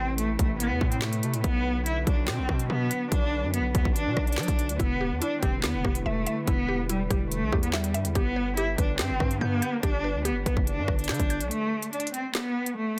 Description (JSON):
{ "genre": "hip hop, drill", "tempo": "143 BPM", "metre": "4/4", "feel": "half-time", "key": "unclear", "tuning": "A4 = 439 Hz", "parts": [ { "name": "warm cello", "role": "melody", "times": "0.0-13.0 s", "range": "G3 to E4", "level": "-32 LUFS", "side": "equal", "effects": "low-pass filter" }, { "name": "warbly tape-like pad", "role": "sustained chords", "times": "0.0-11.5 s", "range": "C3 to B4", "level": "-40 LUFS", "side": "equal", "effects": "chorus, built-in reverb" }, { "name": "distorted 808-style bass", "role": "bass", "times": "0.0-11.5 s", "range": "E1 to F#3", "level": "-32 LUFS", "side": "equal", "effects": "distortion" }, { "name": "drill drum kit", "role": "drums", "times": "0.2-12.8 s", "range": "handclaps, hi-hat, kick drum, rim click, snare drum", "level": "-30 LUFS", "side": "equal", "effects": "none" }, { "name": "mallet-like synth pluck", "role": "accompaniment", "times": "4.8-11.5 s", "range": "E4 to G6", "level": "-37 LUFS", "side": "equal", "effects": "chorus, low-pass filter" } ], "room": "digital ambience", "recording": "dense, heavily limited modern master", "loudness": "-27 LUFS", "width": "mono", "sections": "0.0-11.5 A section; 11.5-13.0 B section", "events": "break 11.5-13.0", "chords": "0.0 Amadd9; 1.4 Bm; 4.8 Em7; 8.2 G; 11.5 N.C." }